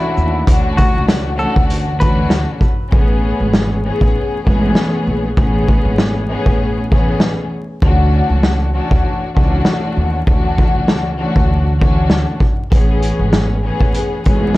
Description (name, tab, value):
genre	hip hop, boom-bap hip-hop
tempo	98 BPM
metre	4/4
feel	swing 55% on 16ths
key	A major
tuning	A4 = 441 Hz
part	clean electric guitar	melody	0.0-2.3 s	E4 to B4	-23 LUFS	equal	spring reverb, high-pass filter, low-pass filter, tape echo
part	warm studio string section	accompaniment	0.0-14.6 s	E3 to G#4	-18 LUFS	left 2 dB	high-pass filter, low-pass filter, plate reverb
part	upright bass	bass	0.2-14.5 s	G#1 to D#2	-18 LUFS	equal	none
part	vintage drum kit	drums	0.2-14.6 s	hi-hat, kick drum, shaker, snare drum	-15 LUFS	equal	vintage 12-bit sampler grit
room	light reverb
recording	dark, warm production, vinyl crackle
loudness	-12 LUFS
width	side -18 dB against mid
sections	0.0-2.9 A section; 2.9-14.6 B section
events	hi-hats muted 2.9-12.7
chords	0.0 Dmaj7; 2.9 Amaj9; 7.8 Dmaj7; 12.7 Amaj9